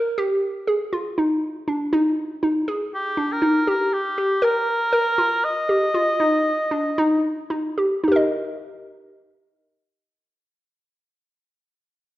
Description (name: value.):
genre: contemporary instrumental, contemporary.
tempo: 118 BPM.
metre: 5/4.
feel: uneven beats.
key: Eb major.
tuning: A4 = 440 Hz.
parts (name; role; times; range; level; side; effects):
hollow square pluck; arpeggios; 0.0-11.4 s; D4 to Eb5; -21 LUFS; equal; chorus.
warm oboe; melody; 2.9-7.5 s; G4 to Eb5; -21 LUFS; equal; none.
room: wet recital hall reverb, RT60 1.5 s.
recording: dark, warm production.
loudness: -19 LUFS.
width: side -16 dB against mid.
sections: 0.0-8.0 A section; 8.0-10.7 B section.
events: slowing down 3.9-8.0.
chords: 0.4 Ab5; 2.9 Eb.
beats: | 0.42 0.92 1.43 1.93 2.43 | 2.93 3.43 3.93 4.43 4.93 | 5.44 5.95 6.46 6.98 7.51 | 8.04 8.57 9.11 9.65 10.18.